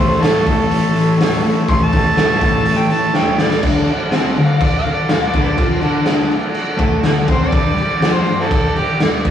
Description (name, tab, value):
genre	garage rock duo or trio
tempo	123 BPM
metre	4/4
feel	straight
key	D major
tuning	A4 = 440 Hz
part	overdriven harmonica	melody	0.0-9.0 s	E4 to C6	-20 LUFS	right 1 dB	none
part	overdriven combo organ	sustained chords	0.0-9.3 s	D4 to D5	-25 LUFS	right 1 dB	none
part	fuzz guitar	riff	0.0-9.3 s	F2 to C5	-18 LUFS	left 2 dB	distortion
part	raw garage drum kit	drums	0.1-9.3 s	crash cymbal, hi-hat, kick drum, snare drum	-16 LUFS	equal	none
room	moderate stone room reverb, RT60 1.0 s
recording	rough rehearsal-room recording, warm saturation, studio reverb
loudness	-13 LUFS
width	side -9 dB against mid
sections	0.0-3.6 A section; 3.6-9.3 B section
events	drum fill 3.1-3.6; harmonica solo 3.6-9.3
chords	0.0 A; 3.6 D; 7.5 G5